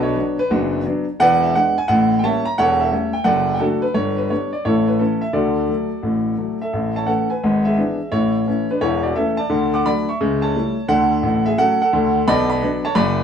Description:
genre	jazz, stride piano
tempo	173 BPM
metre	4/4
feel	swing 66% on 8ths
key	D major, A major from 6.7 s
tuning	A4 = 445 Hz
part	warm grand piano	solo	0.0-13.2 s	E1 to D6	-16 LUFS	equal	none
room	wet small room reverb, RT60 0.5 s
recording	band playing live in one room, nothing above 10.8 kHz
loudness	-16 LUFS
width	side -8 dB against mid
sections	0.0-6.7 A section; 6.7-13.2 B section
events	none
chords	0.0 Bm; 1.2 E7; 1.9 A7b9; 2.6 A7/E; 3.3 D/F#; 4.0 G; 4.7 A; 5.3 D; 6.7 A; 7.4 E7/G#; 8.1 A; 9.5 D; 10.2 A7/C#; 10.9 Dmaj7; 12.3 Bm

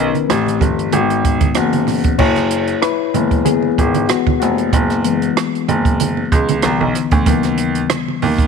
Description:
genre	lush 1970s-style soul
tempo	95 BPM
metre	4/4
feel	swing 54% on 16ths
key	unclear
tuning	A4 = 440 Hz
part	reed electric piano	accompaniment	0.0-8.5 s	C#3 to C#5	-18 LUFS	left 12 dB	overdrive, spring reverb
part	clear baby grand piano	bass	0.0-8.5 s	E#1 to D#2	-18 LUFS	right 3 dB	none
part	compact cocktail drum kit	drums	0.1-8.5 s	crash cymbal, hi-hat, kick drum, rim click	-18 LUFS	right 4 dB	none
part	congas	percussion	0.1-8.4 s	none	-23 LUFS	right 13 dB	none
room	light reverb, small room ambience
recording	1960s-style stereo with parts hard left and right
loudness	-13 LUFS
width	side -6 dB against mid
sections	0.0-2.2 A section; 2.2-8.5 B section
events	reed electric piano solo 2.2-8.5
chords	0.3 Am7; 0.9 G#m7; 1.6 F#7sus4; 2.2 F#9sus4; 6.6 Cmaj7; 7.3 D#7b9b13

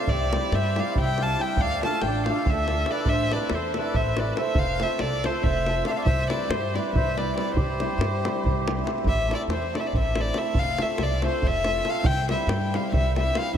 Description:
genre	balkan folk, Balkan wedding band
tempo	281 BPM (eighths)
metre	7/8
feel	straight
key	C major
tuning	A4 = 439 Hz
part	rich violin	melody	0.0-13.6 s	C5 to A5	-27 LUFS	left 1 dB	none
part	mellow accordion	second line	0.0-8.8 s	G4 to F5	-32 LUFS	right 4 dB	ping-pong delay
part	hammered dulcimer	accompaniment	0.0-13.6 s	G3 to A4	-30 LUFS	left 1 dB	none
part	upright bass	bass	0.1-13.6 s	F1 to G2	-28 LUFS	equal	none
part	davul	percussion	0.1-13.6 s	none	-28 LUFS	equal	none
room	moderate huge ambient reverb, RT60 6.0 s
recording	dreamy mix soaked in reverb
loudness	-22 LUFS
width	side -9 dB against mid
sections	0.0-9.0 A section; 9.0-13.6 A section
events	none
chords	0.1 C; 1.6 Dm; 3.1 Am; 4.6 F; 6.1 C; 9.0 Am; 10.5 F; 12.0 C

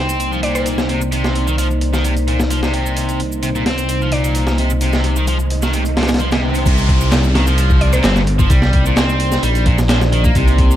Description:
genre	breakbeat, breaks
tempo	130 BPM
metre	4/4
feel	straight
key	unclear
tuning	A4 = 440 Hz
part	deep dark ambient pad	sustained chords	0.0-10.8 s	Bb3 to Eb5	-24 LUFS	equal	chorus, built-in reverb, sidechain pumping
part	distorted electric guitar	riff	0.0-10.8 s	Bb2 to C4	-21 LUFS	equal	overdrive, vintage 12-bit sampler grit, dub echo
part	dark detuned saw bass	bass	0.0-10.8 s	G1 to C2	-16 LUFS	equal	none
part	breakbeat sampler-style drum kit	drums	0.1-10.7 s	hi-hat, kick drum, snare drum	-18 LUFS	equal	high-pass filter on hats, high-pass filter on snare, high-pass filter on kick
part	electronic shaker and handclaps	drums	0.1-10.8 s	none	-30 LUFS	right 2 dB	none
part	mallet-like synth pluck	melody	0.4-0.9, 4.1-4.2, 7.8-8.3 s	C5 to D5	-26 LUFS	left 1 dB	chorus, telephone sound, dub echo
part	riser and downlifter	sound effects	4.3-10.4 s	none	-28 LUFS	right 1 dB	none
room	light reverb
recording	dark, warm production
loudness	-13 LUFS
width	side -12 dB against mid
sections	0.0-6.7 A section; 6.7-10.8 B section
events	riser 4.3-6.7; drop 6.7-10.8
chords	0.0 Cm9

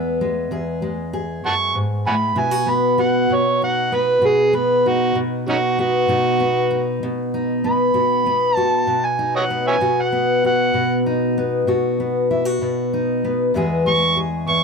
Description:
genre	acoustic country blues, solo or duo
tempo	64 BPM (dotted quarters)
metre	12/8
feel	straight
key	unclear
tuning	A4 = 440 Hz
part	fingerpicked steel-string acoustic guitar	accompaniment	0.0-14.6 s	E2 to G#4	-19 LUFS	left 2 dB	none
part	overdriven harmonica	melody	1.5-14.6 s	C#4 to C#6	-18 LUFS	right 3 dB	plate reverb
room	moderate booth ambience, RT60 0.2 s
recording	none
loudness	-16 LUFS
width	side -5 dB against mid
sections	0.0-14.6 A section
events	harmonica solo 0.0-14.6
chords	0.0 E; 2.4 B; 13.5 E

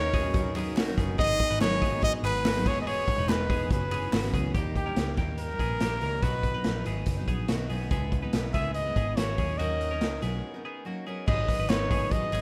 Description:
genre	jangly indie pop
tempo	143 BPM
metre	4/4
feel	straight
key	unclear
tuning	A4 = 440 Hz
part	clear trumpet	melody	0.0-12.4 s	G4 to E5	-32 LUFS	equal	slapback echo
part	picked steel-string acoustic guitar	accompaniment	0.0-12.4 s	F#2 to B4	-38 LUFS	equal	none
part	hollow soft pad	sustained chords	0.0-4.5 s	C#3 to A#4	-41 LUFS	equal	chorus
part	twelve-string electric guitar	arpeggios	0.0-12.4 s	A#3 to B4	-40 LUFS	equal	slapback echo
part	vintage muted picked electric bass	bass	0.0-12.4 s	E1 to D#2	-35 LUFS	equal	none
part	raw garage drum kit	drums	0.1-12.4 s	crash cymbal, hi-hat, kick drum, snare drum	-32 LUFS	equal	none
part	group handclap	percussion	0.6-4.2, 11.7-12.4 s	none	-45 LUFS	equal	none
room	studio reverb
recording	rough home demo mix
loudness	-28 LUFS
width	mono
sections	0.0-4.5 A section; 4.5-11.3 B section; 11.3-12.4 A section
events	break 10.4-11.3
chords	0.0 D#m7; 1.2 G#m7; 2.7 Emaj7; 3.7 F#7sus4; 4.5 D#; 6.2 B; 7.9 C#m7; 9.4 D#m7; 11.3 G#m7

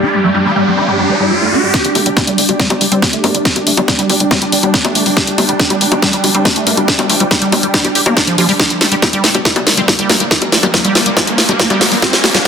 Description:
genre	psychedelic trance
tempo	140 BPM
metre	4/4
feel	straight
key	G minor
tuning	A4 = 440 Hz
part	swarming rave lead	melody	0.0-1.7 s	G3 to F4	-16 LUFS	equal	chorus, phaser, sidechain pumping, tape echo
part	swarming drone	sustained chords	0.0-12.5 s	G3 to G4	-20 LUFS	equal	built-in reverb, sidechain pumping
part	riser	sound effects	0.0-1.7, 9.6-12.5 s	none	-19 LUFS	right 1 dB	none
part	ethereal airy pad	texture	0.0-12.5 s	D4 to G5	-22 LUFS	right 3 dB	ensemble chorus, built-in reverb, phaser, sidechain pumping
part	liquid acid bass	riff	0.2-12.4 s	F3 to G4	-17 LUFS	equal	chorus, auto-pan, sidechain pumping, tape echo
part	electronic kick drum	drums	1.7-12.5 s	none	-16 LUFS	equal	high-pass filter on kick, studio ambience
part	garage drum kit	drums	1.7-12.5 s	bongos, hi-hat, snare drum	-12 LUFS	left 1 dB	high-pass filter on snare, studio ambience, high-pass filter on hats, high-pass filter on perc
part	tight sequencer bass	bass	1.8-12.4 s	F1 to G2	-27 LUFS	equal	none
part	resonant blip pluck	second line	2.9-11.8 s	F3 to C4	-26 LUFS	left 1 dB	none
room	moderate digital room reverb, RT60 1.1 s, digital ambience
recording	dense, heavily limited modern master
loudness	-10 LUFS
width	side -7 dB against mid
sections	0.0-1.7 A section; 1.7-12.5 B section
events	riser 0.0-1.7, 9.6-12.5; filter sweep on acid bass 0.0-1.7, 1.7-12.5; build-up 1.7-12.5; drum fill 1.7-12.5; filter sweep on synth drone 1.7-12.5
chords	0.0 G5

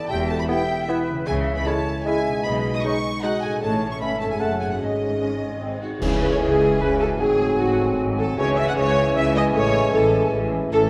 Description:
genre	cinematic, playful, whimsical film cue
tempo	153 BPM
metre	3/4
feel	straight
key	C# minor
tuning	A4 = 440 Hz
part	marimba with soft mallets	melody	0.0-10.9 s	D#4 to D#5	-32 LUFS	equal	none
part	warm studio violin section	melody	0.0-10.9 s	F#4 to D#6	-36 LUFS	equal	none
part	clear studio violin section	second line	0.0-10.8 s	F#4 to D#6	-35 LUFS	equal	none
part	silver concert flute	second line	0.0-10.9 s	B4 to A5	-33 LUFS	equal	none
part	concert harp	arpeggios	0.0-10.9 s	F#2 to C#5	-32 LUFS	equal	none
part	rich studio cello section	bass	0.1-10.9 s	E2 to C#3	-32 LUFS	equal	none
part	rich studio double bass section	bass	0.1-10.9 s	E1 to C#2	-32 LUFS	equal	none
part	warm clarinet	second line	0.5-10.9 s	B#3 to E4	-33 LUFS	equal	none
part	warm bassoon	accompaniment	0.5-10.9 s	E3 to B3	-32 LUFS	equal	none
part	warm studio viola section	accompaniment	0.5-10.9 s	G#3 to F#5	-26 LUFS	equal	none
part	mellow French horn section	sustained chords	0.5-10.9 s	G#3 to F#4	-32 LUFS	equal	none
part	cymbal swell, clash cymbals and concert bass drum	percussion	3.6-6.8 s	none	-35 LUFS	equal	none
room	wet scoring stage reverb, RT60 1.8 s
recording	none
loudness	-22 LUFS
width	mono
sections	0.0-6.0 A section; 6.0-10.9 B section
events	band accent 6.0-6.4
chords	0.1 Em; 1.3 C#m; 2.4 G#m/B; 3.6 A; 4.4 F#m; 4.8 G#sus4; 5.6 G#; 6.0 C#m; 7.2 G#7b9; 8.4 C#m; 9.6 Amaj7

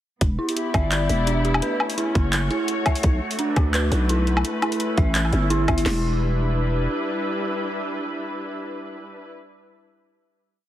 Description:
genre	half-time drum and bass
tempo	170 BPM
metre	4/4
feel	swing 55% on 16ths, half-time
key	E dorian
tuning	A4 = 440 Hz
part	muted studio string section	sustained chords	0.2-9.3 s	G3 to D5	-27 LUFS	left 1 dB	sidechain pumping
part	growling 808-style bass	bass	0.2-6.9 s	E1 to D2	-22 LUFS	equal	none
part	drum and bass drum kit	drums	0.2-5.9 s	crash cymbal, kick drum, snare drum	-22 LUFS	equal	overdrive
part	drum and bass drum kit	drums	0.2-5.8 s	handclaps, hi-hat, woodblock	-26 LUFS	left 1 dB	overdrive
part	dark detuned synth bell	arpeggios	0.4-6.0 s	D4 to E5	-27 LUFS	right 1 dB	chorus, ping-pong delay
room	light reverb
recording	heavily compressed radio sound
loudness	-20 LUFS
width	side -12 dB against mid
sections	0.2-5.9 drop; 5.9-8.7 final chord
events	drop 0.2-5.9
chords	0.2 Em7; 1.6 F#m; 3.0 Bm7; 4.4 Aadd9; 5.9 Em7

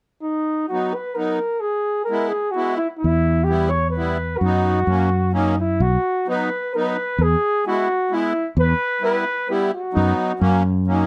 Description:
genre	alpine folk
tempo	130 BPM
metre	3/4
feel	straight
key	B major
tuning	A4 = 440 Hz
part	mellow flugelhorn	melody	0.2-11.1 s	D#4 to C#5	-23 LUFS	equal	none
part	accordion	accompaniment	0.7-11.1 s	F#3 to E4	-26 LUFS	equal	light tremolo tuning
part	fretless electric bass	bass	3.0-11.0 s	B1 to F#2	-21 LUFS	equal	none
room	light reverb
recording	none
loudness	-21 LUFS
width	mono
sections	0.2-5.8 A section; 5.8-11.1 B section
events	none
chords	0.2 B; 1.6 E; 3.0 Em; 4.4 B/F#; 4.9 F#; 5.8 B; 7.2 E; 8.6 Em; 10.0 B/F#; 10.4 F#

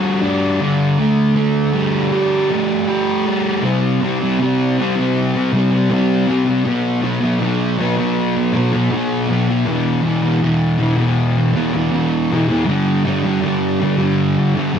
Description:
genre	rock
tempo	80 BPM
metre	4/4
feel	straight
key	unclear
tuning	A4 = 438 Hz
part	fuzz guitar	solo	0.0-14.8 s	E2 to G4	-14 LUFS	equal	distortion, wide subtle chorus
room	light reverb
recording	dark, warm production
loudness	-14 LUFS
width	side -8 dB against mid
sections	0.0-3.6 A section; 3.6-14.8 B section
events	none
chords	0.0 G5; 0.6 Dsus4; 3.6 C5; 6.7 B5; 9.7 E5; 12.7 G5

